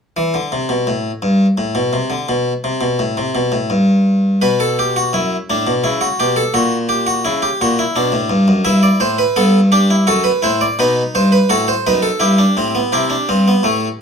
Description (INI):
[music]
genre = classical, baroque-style 3-part fugue for harpsichord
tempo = 85 BPM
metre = 3/4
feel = straight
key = E minor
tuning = A4 = 440 Hz
[part]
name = harpsichord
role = solo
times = 0.2-14.0 s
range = F#2 to E5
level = -13 LUFS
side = equal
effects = none
[sound]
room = wet large studio reverb, RT60 0.8 s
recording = minimal, uncompressed stereo recording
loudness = -13 LUFS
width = side -6 dB against mid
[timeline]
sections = 0.2-12.9 A section; 12.9-14.0 B section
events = none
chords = 0.2 N.C.; 4.4 Bm; 5.8 C#dim; 6.5 F#7/A#; 7.9 Bm; 8.6 Em/G; 10.1 F#dim; 10.8 B7; 12.2 Em/G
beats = | 0.18 0.89 1.60 | 2.31 3.02 3.73 | 4.43 5.14 5.84 | 6.54 7.24 7.94 | 8.64 9.35 10.07 | 10.78 11.50 12.21 | 12.94 13.66